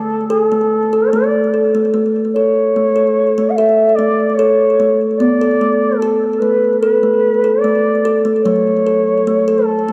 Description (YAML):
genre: world meditative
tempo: 74 BPM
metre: 4/4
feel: straight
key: unclear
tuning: A4 = 438 Hz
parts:
  - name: reedy bansuri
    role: melody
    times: 0.0-9.9 s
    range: A4 to F#5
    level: -18 LUFS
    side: equal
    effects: delay
  - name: kalimba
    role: arpeggios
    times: 0.0-9.9 s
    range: D3 to A4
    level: -16 LUFS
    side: equal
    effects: delay
room: wet echo chamber reverb, RT60 2.3 s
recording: worn, warbling old tape, cassette tape, warbly pitch drift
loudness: -14 LUFS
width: mono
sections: 0.0-9.9 A section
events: none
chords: 0.0 D5; 1.9 A; 5.2 Bm; 8.4 F#m